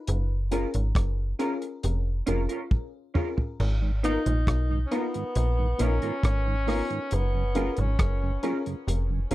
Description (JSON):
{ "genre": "lovers rock reggae", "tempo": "68 BPM", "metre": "4/4", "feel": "straight", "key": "unclear", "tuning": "A4 = 438 Hz", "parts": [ { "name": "slap-like FM bass", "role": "bass", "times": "0.1-9.3 s", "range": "E#1 to B1", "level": "-25 LUFS", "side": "equal", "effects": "none" }, { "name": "cloth-damped thuddy drum kit", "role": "drums", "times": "0.1-9.3 s", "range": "crash cymbal, hi-hat, kick drum, rim click, toms", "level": "-28 LUFS", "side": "equal", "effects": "none" }, { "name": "FM electric piano with soft pad layer", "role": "accompaniment", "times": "0.5-9.3 s", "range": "B3 to A#4", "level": "-34 LUFS", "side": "left 5 dB", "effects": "chorus, tape echo" }, { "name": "electric guitar through a small old amp", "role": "stabs", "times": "0.5-9.3 s", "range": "B3 to A#4", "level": "-31 LUFS", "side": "right 4 dB", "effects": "analog chorus" }, { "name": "mellow tonewheel organ", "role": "accompaniment", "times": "3.8-9.3 s", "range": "F#2 to E#4", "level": "-34 LUFS", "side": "right 5 dB", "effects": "overdrive, chorus vibrato, slow rotary speaker" }, { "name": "warm tenor saxophone", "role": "melody", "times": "4.0-8.7 s", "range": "B3 to D#4", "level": "-32 LUFS", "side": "equal", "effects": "tape echo" } ], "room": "little or no reverb", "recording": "dry, close 1970s-style studio recording", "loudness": "-24 LUFS", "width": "side -16 dB against mid", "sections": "0.0-9.3 A section", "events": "drum fill 2.7-3.6", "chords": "0.1 F#maj7; 3.6 G#m69; 7.1 F#maj7" }